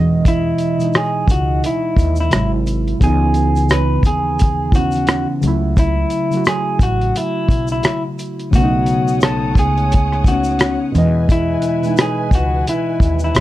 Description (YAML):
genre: lo-fi hip hop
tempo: 87 BPM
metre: 4/4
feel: swing 59% on 16ths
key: unclear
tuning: A4 = 440 Hz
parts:
  - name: muted felt-like synth keys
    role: accompaniment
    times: 0.0-13.4 s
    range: B2 to D#5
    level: -19 LUFS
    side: right 1 dB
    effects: chorus, low-pass filter, plate reverb
  - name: upright bass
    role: bass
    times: 0.0-13.4 s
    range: G#1 to E2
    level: -20 LUFS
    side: equal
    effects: none
  - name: electric guitar through a small old amp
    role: melody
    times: 0.3-13.4 s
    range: E4 to B4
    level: -20 LUFS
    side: equal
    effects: low-pass filter, analog delay, plate reverb
  - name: cloth-damped thuddy drum kit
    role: drums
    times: 0.3-13.4 s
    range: hi-hat, kick drum, rim click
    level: -15 LUFS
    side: equal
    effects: none
  - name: tube shaker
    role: percussion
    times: 0.3-13.4 s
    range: none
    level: -40 LUFS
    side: left 5 dB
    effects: none
  - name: rich studio string section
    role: sustained chords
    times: 8.5-13.4 s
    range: B4 to D#6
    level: -30 LUFS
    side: equal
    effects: low-pass filter, plate reverb
room: light reverb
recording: cassette tape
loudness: -14 LUFS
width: side -15 dB against mid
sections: 0.0-13.4 A section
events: none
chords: 0.0 Emaj7; 2.3 G#aug7; 3.0 C#m9; 5.4 F#m7; 8.5 B9; 10.9 Emaj7